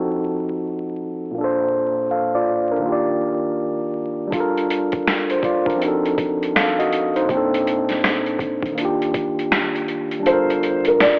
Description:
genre	lo-fi hip hop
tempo	81 BPM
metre	4/4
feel	swing 63% on 16ths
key	G minor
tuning	A4 = 441 Hz
part	tine electric piano	accompaniment	0.0-11.2 s	Bb2 to F5	-22 LUFS	equal	cassette tape, low-pass filter
part	boom bap sampler-style drum kit	drums	4.3-11.2 s	finger snaps, hi-hat, kick drum, snare drum	-25 LUFS	equal	overdrive, cassette tape
part	felt-muted upright piano	melody	10.3-11.2 s	Bb4 to D5	-19 LUFS	equal	low-pass filter, cassette tape
part	round analog bass	bass	10.3-10.9 s	G1	-39 LUFS	equal	none
room	wet spring reverb, RT60 2.0 s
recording	home recording on cassette, vinyl crackle, telephone sound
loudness	-21 LUFS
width	mono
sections	0.0-10.3 A section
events	filter sweep on tine electric piano 0.0-10.3; kick muted 10.3-11.2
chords	0.0 F7b9; 1.4 Bbmaj7; 2.8 Ebmaj7; 4.3 Gm9; 5.8 F7b9; 7.3 Bbmaj7; 8.8 Ebmaj7; 10.3 Gm9

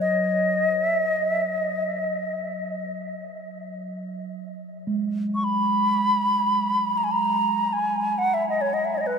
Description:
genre	world meditative, free-time meditation music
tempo	free time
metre	none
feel	none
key	G# minor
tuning	A4 = 440 Hz
part	bright alto flute	melody	0.0-9.2 s	B4 to C#6	-22 LUFS	equal	ping-pong delay
part	bronze singing bowl	texture	0.0-9.2 s	F#3 to G#3	-30 LUFS	right 2 dB	stereo widening
room	wet huge ambient reverb, RT60 8.8 s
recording	none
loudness	-21 LUFS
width	side -6 dB against mid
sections	0.0-9.2 A section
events	none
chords	none

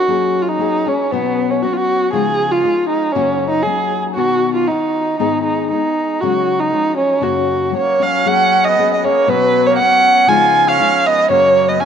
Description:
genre	mexican folk, mariachi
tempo	118 BPM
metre	2/4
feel	straight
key	F# major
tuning	A4 = 442 Hz
part	dark violin	melody	0.0-11.8 s	B3 to G#5	-14 LUFS	right 2 dB	none
part	nylon-string guitar	accompaniment	0.0-11.8 s	F#2 to G#4	-20 LUFS	left 13 dB	none
part	warm trumpet	second line	7.8-11.8 s	F#3 to E#4	-21 LUFS	right 10 dB	slapback echo
room	moderate plate reverb, RT60 2.9 s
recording	1960s-style stereo with parts hard left and right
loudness	-12 LUFS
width	side -8 dB against mid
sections	0.1-8.3 A section; 8.3-11.8 A section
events	none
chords	0.1 F#add9; 1.1 Bsus2; 2.1 C#add9; 3.1 F#; 4.2 B; 5.2 G#m; 6.2 C#sus4; 6.7 C#; 7.2 F#; 8.3 F#add9; 9.3 Bsus2; 10.3 C#add9; 11.3 F#

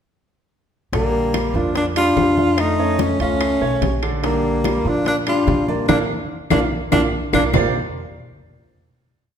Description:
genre	Afro-Cuban jazz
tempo	145 BPM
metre	4/4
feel	straight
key	Bb major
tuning	A4 = 440 Hz
part	mellow tenor saxophone	melody	0.9-7.4 s	Bb3 to F4	-21 LUFS	right 1 dB	none
part	warm trombone	second line	0.9-7.4 s	G3 to D4	-24 LUFS	left 5 dB	none
part	clear upright piano	accompaniment	0.9-7.7 s	D3 to F5	-24 LUFS	right 5 dB	none
part	upright bass	bass	0.9-7.7 s	Bb1 to Bb2	-25 LUFS	equal	none
part	bongos	percussion	0.9-7.6 s	none	-27 LUFS	left 6 dB	none
part	congas	percussion	0.9-7.6 s	none	-28 LUFS	left 1 dB	none
part	timbales	percussion	0.9-7.6 s	none	-29 LUFS	right 6 dB	none
part	claves	percussion	1.3-7.6 s	none	-29 LUFS	left 5 dB	none
room	wet recital hall reverb, RT60 1.4 s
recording	recorded in a church or concert hall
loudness	-16 LUFS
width	side -8 dB against mid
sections	0.9-7.5 A section; 7.5-9.2 final chord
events	band accent 5.9-7.5; drum fill 7.3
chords	0.9 Bb6; 2.6 Faug7; 4.2 Bb6; 7.5 Bb69

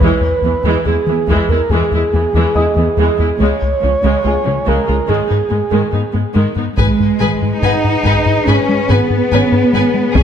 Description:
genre	cinematic, hybrid orchestral and electronic film score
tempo	71 BPM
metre	4/4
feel	straight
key	G# minor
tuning	A4 = 440 Hz
part	breathy flute-like synth lead	melody	0.0-6.4 s	G#4 to C#5	-17 LUFS	right 4 dB	chorus, tape echo
part	rich symphonic viola section	accompaniment	0.0-10.2 s	C#3 to G#4	-20 LUFS	right 1 dB	none
part	rubbery square bass	riff	0.0-10.2 s	C#2 to G#3	-17 LUFS	left 3 dB	none
part	warm symphonic cello section	bass	0.0-10.2 s	C#2 to D#4	-18 LUFS	right 2 dB	none
part	taiko ensemble	drums	0.0-1.7, 6.8-10.2 s	none	-19 LUFS	left 1 dB	none
part	felt-muted upright piano	texture	0.0-10.2 s	C#4 to F#6	-25 LUFS	left 2 dB	tape echo
part	clear symphonic violin section	melody	6.8-10.2 s	G#5	-27 LUFS	left 2 dB	none
part	clear symphonic violin section	second line	6.8-10.2 s	G#4 to B4	-22 LUFS	left 3 dB	none
part	mellow French horn section	sustained chords	6.8-10.2 s	G#4 to C#5	-21 LUFS	left 6 dB	none
part	warm symphonic double bass section	bass	6.8-10.2 s	F#1 to G#1	-21 LUFS	right 5 dB	none
room	moderate concert hall reverb, RT60 2.1 s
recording	none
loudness	-12 LUFS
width	side -8 dB against mid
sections	0.0-6.8 A section; 6.8-10.2 B section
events	none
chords	0.0 E; 3.4 C#; 5.1 G#m

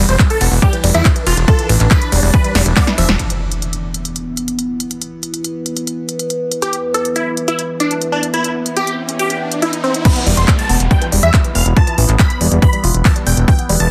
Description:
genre	psychedelic trance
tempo	140 BPM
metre	4/4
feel	straight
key	E minor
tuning	A4 = 440 Hz
part	overtone-sweeping drone	sustained chords	0.1-13.9 s	E3 to D4	-26 LUFS	equal	chorus, built-in reverb, sidechain pumping
part	woody wave-folded pluck	riff	0.0-3.0, 10.1-13.8 s	E3 to F4	-25 LUFS	equal	chorus, sidechain pumping, digital delay
part	fat analog bass	bass	0.0-3.2, 10.3-13.9 s	E1 to E2	-16 LUFS	equal	none
part	supersaw stab	melody	0.1-3.1, 6.6-13.9 s	C4 to C6	-22 LUFS	equal	phaser, sidechain pumping, dub echo
part	techno drum kit	drums	0.1-13.9 s	crash cymbal, handclaps, hi-hat, ride cymbal, snare drum	-22 LUFS	equal	none
part	electronic kick drum	drums	0.2-2.9, 10.1-13.6 s	none	-14 LUFS	equal	none
part	impact, riser and downlifter	sound effects	3.2-13.5 s	none	-28 LUFS	equal	none
room	light reverb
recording	dense, heavily limited modern master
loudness	-15 LUFS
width	mono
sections	0.0-3.2 A section; 3.2-10.1 B section; 10.1-13.9 A section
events	drop 0.0-3.2, 10.1-13.9; drum fill 2.6-3.2; impact 3.2-4.9; riser 7.9-10.1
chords	0.0 E5

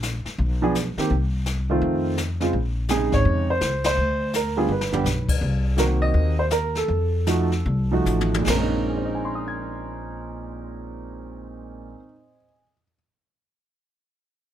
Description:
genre	jazz piano trio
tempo	142-167 BPM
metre	4/4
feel	swing 64% on 8ths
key	Bb minor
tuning	A4 = 437 Hz
part	upright bass	bass	0.0-11.9 s	G1 to F2	-24 LUFS	left 1 dB	none
part	jazz brush drum kit	drums	0.0-8.8 s	brushed snare drum, crash cymbal, hi-hat, kick drum, ride cymbal, snare drum, toms	-28 LUFS	left 2 dB	none
part	warm baby grand piano	melody	0.6-12.9 s	Bb2 to Ab6	-24 LUFS	right 2 dB	none
room	little or no reverb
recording	none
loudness	-20 LUFS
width	side -11 dB against mid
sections	0.0-5.4 A section; 5.4-8.5 B section; 8.5-11.9 C section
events	band accent 3.8; drum fill 4.7-5.1, 8.1-8.5; slowing down 5.4-8.5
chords	0.4 N.C.; 1.8 F7; 2.5 Bbm11; 4.0 D7(no3); 4.7 G; 5.4 Cm7b5; 6.9 F7b9; 8.5 Bbm11

